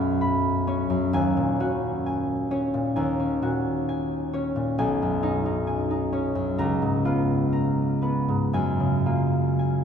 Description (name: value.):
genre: classical, solo harp piece.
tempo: 57-67 BPM.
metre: 4/4.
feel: rubato.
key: unclear.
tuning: A4 = 440 Hz.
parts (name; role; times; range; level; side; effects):
concert harp; solo; 0.0-9.8 s; B1 to B5; -22 LUFS; equal; none.
room: wet cathedral reverb, RT60 4.7 s.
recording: minimal, uncompressed stereo recording, faint mains hum.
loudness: -22 LUFS.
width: side -7 dB against mid.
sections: 0.0-9.8 A section.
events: none.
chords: 0.0 Bsus2; 1.1 D#m7; 4.8 B69; 6.6 C#13; 8.5 F#maj9.